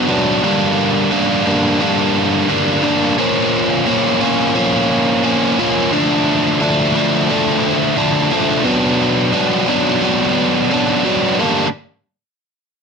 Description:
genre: rock.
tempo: 88 BPM.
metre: 4/4.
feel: straight.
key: unclear.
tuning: A4 = 440 Hz.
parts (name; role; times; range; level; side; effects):
biting overdriven guitar; solo; 0.0-11.7 s; G2 to D4; -13 LUFS; equal; none.
room: moderate studio ambience, RT60 0.4 s.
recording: dense, heavily limited modern master.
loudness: -13 LUFS.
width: side -5 dB against mid.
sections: 0.4-11.4 A section; 11.4-12.8 B section.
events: none.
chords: 0.4 Gm; 3.2 Bbm; 5.9 Dm; 8.7 Bm; 11.4 Gm.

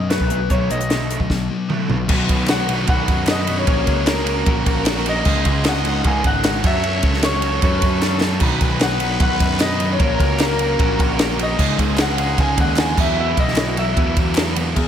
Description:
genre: indie rock.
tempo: 152 BPM.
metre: 4/4.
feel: straight.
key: unclear.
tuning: A4 = 442 Hz.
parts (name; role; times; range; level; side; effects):
electric guitar through a small old amp; melody; 0.0-14.9 s; G#4 to G#5; -23 LUFS; left 2 dB; slapback echo.
thick fuzz guitar; riff; 0.0-14.9 s; E2 to B4; -25 LUFS; left 5 dB; distortion.
growling picked electric bass; bass; 0.0-14.9 s; G#1 to F#2; -23 LUFS; right 1 dB; overdrive.
cranked stack guitar; riff; 0.1-14.8 s; E2 to B4; -26 LUFS; right 7 dB; overdrive, ensemble chorus, slapback echo.
compact cocktail drum kit; drums; 0.1-14.9 s; crash cymbal, hi-hat, kick drum, ride cymbal, snare drum, toms; -19 LUFS; equal; none.
growling trumpet; second line; 2.1-14.5 s; D#4 to D#5; -30 LUFS; left 3 dB; none.
group handclap; percussion; 2.5-14.4 s; none; -34 LUFS; left 5 dB; none.
room: moderate recital hall reverb, RT60 1.4 s, small room ambience.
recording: big arena sound.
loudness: -16 LUFS.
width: side -9 dB against mid.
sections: 0.0-2.1 A section; 2.1-14.8 B section.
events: drum fill 1.3-2.1, 8.0-8.4.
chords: 0.0 B7; 2.1 B; 3.7 F#/A#; 5.3 C#sus2; 6.6 F#m; 8.4 B; 10.0 F#/A#; 11.6 C#sus2; 13.0 Esus2.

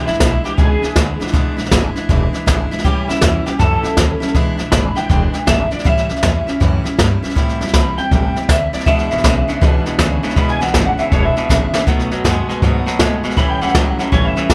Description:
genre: rockabilly.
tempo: 160 BPM.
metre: 4/4.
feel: swing 64% on 8ths.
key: E mixolydian.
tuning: A4 = 442 Hz.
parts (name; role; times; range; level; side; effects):
electric guitar through a small old amp; melody; 0.0-14.5 s; E4 to B5; -23 LUFS; equal; ensemble chorus, tape echo.
picked steel-string acoustic guitar; accompaniment; 0.0-14.5 s; E2 to F#4; -24 LUFS; equal; none.
upright bass; bass; 0.1-14.5 s; E1 to A2; -23 LUFS; equal; none.
jazz brush drum kit; drums; 0.1-14.5 s; hi-hat, kick drum, snare drum; -18 LUFS; equal; none.
twangy electric guitar; riff; 8.9-14.5 s; E2 to G#3; -24 LUFS; equal; none.
room: light reverb.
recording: none.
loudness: -16 LUFS.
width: mono.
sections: 0.0-14.5 A section.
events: drum fill 11.5-11.9.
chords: 0.0 E7; 2.8 A7; 4.4 E7; 5.9 A7; 7.4 Am7; 8.9 E7; 11.9 B7; 13.4 A7.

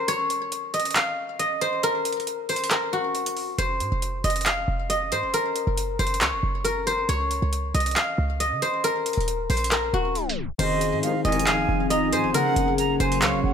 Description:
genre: hip hop, trap.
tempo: 137 BPM.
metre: 4/4.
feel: half-time.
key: F phrygian.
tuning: A4 = 439 Hz.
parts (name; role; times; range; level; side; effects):
guzheng; melody; 0.0-13.5 s; Gb4 to F5; -24 LUFS; left 1 dB; ping-pong delay.
booming analog drum machine; drums; 0.1-13.3 s; crash cymbal, handclaps, hi-hat; -27 LUFS; right 1 dB; none.
short 808-style bass; bass; 3.6-13.5 s; Eb1 to Db3; -27 LUFS; right 1 dB; none.
silver concert flute; second line; 10.6-13.5 s; Eb5 to Bb5; -27 LUFS; right 7 dB; ping-pong delay.
concert harp; accompaniment; 10.6-13.5 s; Db3 to Ab4; -27 LUFS; left 7 dB; none.
airy breathy pad; sustained chords; 10.9-13.5 s; F3 to Ab4; -27 LUFS; equal; chorus.
clear brass ensemble; stabs; 11.0-11.6 s; C2 to Eb3; -31 LUFS; left 6 dB; none.
room: light reverb, studio reverb.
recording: tape stop.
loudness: -22 LUFS.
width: side -7 dB against mid.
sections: 0.0-10.6 A section; 10.6-13.5 B section.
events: break 0.0-3.6; tape stop 10.2-10.6.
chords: 0.0 N.C.; 3.6 Fm; 5.3 Gb; 7.1 Db; 8.8 Ebm; 10.6 Fm7; 12.3 Gbadd9.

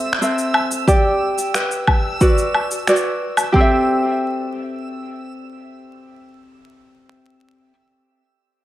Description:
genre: folktronica.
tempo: 90 BPM.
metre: 4/4.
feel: straight.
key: C lydian.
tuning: A4 = 441 Hz.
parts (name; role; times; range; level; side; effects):
tenor ukulele; arpeggios; 0.0-7.7 s; C4 to E5; -19 LUFS; equal; tape echo.
backwards swelling texture; texture; 0.0-3.6 s; E6; -30 LUFS; right 2 dB; built-in reverb.
electronic finger snaps, cabasa and woodblock; drums; 0.1-3.5 s; none; -20 LUFS; equal; overdrive.
electronic kick drum; drums; 0.9-3.7 s; none; -16 LUFS; equal; overdrive.
room: light reverb, digital ambience.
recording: vinyl crackle.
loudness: -15 LUFS.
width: side -14 dB against mid.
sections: 0.0-3.5 A section; 3.5-6.2 B section.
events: none.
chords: 0.0 Am; 0.9 Gmaj7; 3.5 C6.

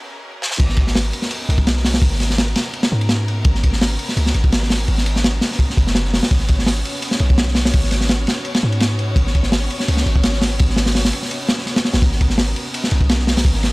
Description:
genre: drum and bass, jungle.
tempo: 168 BPM.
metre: 4/4.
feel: swing 53% on 16ths.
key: G# minor.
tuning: A4 = 444 Hz.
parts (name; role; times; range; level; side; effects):
clear studio string section; sustained chords; 0.0-13.7 s; B3 to C#5; -28 LUFS; equal; none.
crunchy breakbeat drum kit; drums; 0.4-13.7 s; crash cymbal, hi-hat, kick drum, ride cymbal, snare drum; -17 LUFS; equal; high-pass filter on kick, high-pass filter on cymbals, high-pass filter on hats, high-pass filter on snare, high-pass filter on room.
warm 808-style bass; bass; 0.6-13.7 s; F#1 to G#2; -19 LUFS; equal; none.
room: small room ambience.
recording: dry, gritty hardware recording, high-pass filter.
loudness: -15 LUFS.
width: side -24 dB against mid.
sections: 0.6-13.7 A section.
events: break 0.0-0.6; drum fill 0.4; drop 0.6-13.7.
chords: 0.0 G#m11.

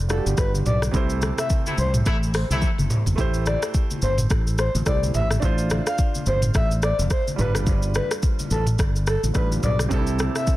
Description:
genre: afrobeats.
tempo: 107 BPM.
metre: 4/4.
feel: swing 58% on 16ths.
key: unclear.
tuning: A4 = 440 Hz.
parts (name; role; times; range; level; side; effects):
warm grand piano; accompaniment; 0.0-10.6 s; C3 to C5; -31 LUFS; right 5 dB; none.
fingered electric bass; bass; 0.0-10.3 s; F1 to C2; -23 LUFS; equal; none.
breathy flute-like synth lead; melody; 0.1-10.5 s; A4 to F5; -28 LUFS; left 1 dB; chorus, digital delay.
afro-pop drum kit; drums; 0.1-10.6 s; hi-hat, kick drum, rim click, shaker, toms; -23 LUFS; equal; none.
congas; percussion; 0.3-10.3 s; none; -32 LUFS; left 2 dB; none.
clear horn section; second line; 1.7-2.7 s; C3 to E4; -30 LUFS; left 1 dB; none.
room: digital ambience.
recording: dense, heavily limited modern master.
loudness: -19 LUFS.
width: side -16 dB against mid.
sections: 0.0-10.6 A section.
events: band accent 0.9-3.2; drum fill 2.6-3.2.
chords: 0.0 G7; 0.9 C6; 5.4 Dm7; 7.4 G7; 9.9 C6.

